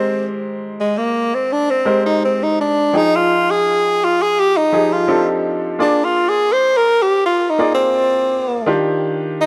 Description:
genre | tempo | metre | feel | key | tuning
soul | 84 BPM | 4/4 | straight | F dorian | A4 = 441 Hz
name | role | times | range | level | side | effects
warm tenor saxophone | melody | 0.0-9.5 s | Ab3 to C5 | -17 LUFS | equal | none
clear grand piano | accompaniment | 0.0-9.5 s | Eb3 to G5 | -23 LUFS | equal | none
room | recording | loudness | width
moderate plate reverb, RT60 2.6 s | none | -16 LUFS | mono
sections
0.0-9.5 A section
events
tenor saxophone solo 0.0-9.5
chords
0.0 Abmaj9; 2.9 Fm9; 5.1 F13; 5.8 Bb7; 8.7 Ebmaj9

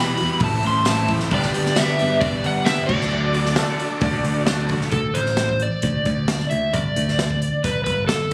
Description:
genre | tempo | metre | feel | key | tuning
folk rock and heartland rock | 133 BPM | 4/4 | straight | unclear | A4 = 441 Hz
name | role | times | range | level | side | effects
overdriven slide guitar | melody | 0.0-8.3 s | A4 to C6 | -25 LUFS | equal | tape echo
picked steel-string acoustic guitar | accompaniment | 0.0-4.9 s | E2 to G4 | -30 LUFS | equal | none
tonewheel organ | sustained chords | 0.0-4.9 s | D4 to E5 | -36 LUFS | equal | none
raw garage guitar | riff | 0.0-4.9 s | E2 to G4 | -30 LUFS | equal | overdrive
picked electric bass | bass | 0.0-8.3 s | G1 to E2 | -25 LUFS | equal | none
natural country drum kit | drums | 0.2-8.3 s | crash cymbal, hi-hat, kick drum, snare drum | -28 LUFS | equal | none
tambourine | percussion | 0.9-4.6 s | none | -36 LUFS | equal | none
bright upright piano | second line | 3.5-4.8 s | G#4 to D5 | -32 LUFS | equal | none
room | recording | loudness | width
light reverb, studio ambience | recorded on a phone in the room, club reverb | -21 LUFS | mono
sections
0.0-4.9 A section; 4.9-8.3 B section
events
none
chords
0.4 Am; 1.3 G; 2.9 D; 4.9 D5; 6.7 G5

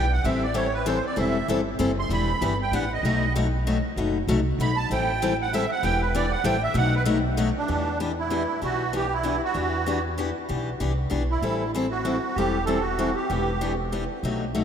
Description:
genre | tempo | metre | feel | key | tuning
acoustic string swing (jazz manouche) | 193 BPM | 3/4 | swing 58% on 8ths | E minor | A4 = 440 Hz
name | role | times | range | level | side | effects
musette accordion | melody | 0.0-13.7 s | D4 to C6 | -27 LUFS | right 4 dB | none
picked steel-string acoustic guitar | accompaniment | 0.0-14.6 s | B2 to A4 | -26 LUFS | left 3 dB | none
upright bass | bass | 0.0-14.6 s | E1 to E2 | -28 LUFS | equal | none
room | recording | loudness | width
wet cathedral reverb, RT60 5.2 s | in a vast, echoing space | -22 LUFS | side -8 dB against mid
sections
0.0-7.7 A section; 7.7-14.6 B section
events
accordion solo 0.0-7.7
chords
0.3 Am7; 2.1 Em7; 3.0 B7b9; 4.9 Am7; 5.8 Em7; 6.5 Am7; 6.8 B7; 7.7 Em9; 11.4 Am7; 13.3 Em7

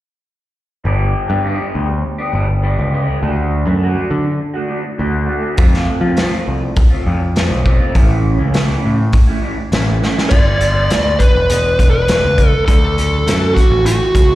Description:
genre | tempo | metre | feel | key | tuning
quiet-loud alternative rock | 101 BPM | 4/4 | straight | G lydian | A4 = 440 Hz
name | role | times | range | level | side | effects
electric guitar through a small old amp | arpeggios | 0.8-14.3 s | G2 to G4 | -21 LUFS | right 1 dB | phaser, slapback echo
growling picked electric bass | bass | 0.8-14.3 s | E1 to F3 | -16 LUFS | equal | overdrive
raw garage drum kit | drums | 5.6-14.3 s | crash cymbal, hi-hat, kick drum, snare drum | -14 LUFS | equal | none
smooth overdriven lead guitar | melody | 10.3-14.3 s | F#4 to D5 | -15 LUFS | equal | slapback echo
room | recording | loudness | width
light reverb | live gig heard through the venue's PA, recital hall reverb | -12 LUFS | side -15 dB against mid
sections
0.8-10.3 A section; 10.3-14.3 B section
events
drum fill 10.0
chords
0.8 G; 3.2 D; 5.6 F; 8.0 A; 10.3 G; 12.7 D

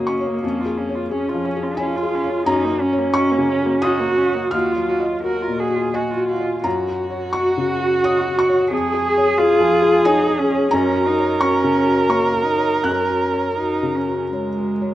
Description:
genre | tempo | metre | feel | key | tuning
neoclassical piano and strings | 87 BPM | 3/4 | uneven beats, rubato | F# major | A4 = 440 Hz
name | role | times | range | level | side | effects
muted cello | second line | 0.0-14.9 s | G#3 to A#4 | -21 LUFS | right 2 dB | none
felt-muted upright piano | accompaniment | 0.0-14.9 s | D#2 to F#6 | -21 LUFS | left 2 dB | none
muted viola | accompaniment | 0.0-14.8 s | A#3 to A#4 | -22 LUFS | right 1 dB | none
room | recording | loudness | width
light reverb, small room reverb | rough home demo mix | -16 LUFS | side -14 dB against mid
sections
0.0-14.9 A section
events
none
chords
0.4 C#/E#; 2.5 F#; 4.5 D#madd9; 6.6 F#; 8.7 C#/E#; 10.7 F#

